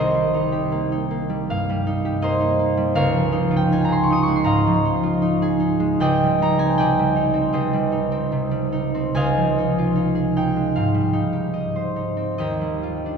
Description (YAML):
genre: classical, solo harp piece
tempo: 67-83 BPM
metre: 4/4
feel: rubato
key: unclear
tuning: A4 = 440 Hz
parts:
  - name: concert harp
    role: solo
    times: 0.0-13.2 s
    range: C2 to Eb6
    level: -18 LUFS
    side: right 1 dB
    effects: none
room: wet church reverb, RT60 3.7 s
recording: minimal, uncompressed stereo recording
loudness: -18 LUFS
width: side -6 dB against mid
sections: 0.0-13.2 A section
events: none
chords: 0.0 Cm7; 3.0 Db69; 6.0 Cmadd9/Db; 9.1 Dbadd9; 10.7 Abmaj7; 12.4 Ebmaj9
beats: 0.72 1.48 2.23 | 2.96 3.71 4.46 5.22 | 5.99 6.77 7.53 8.29 | 9.13 9.94 10.72 11.53 | 12.38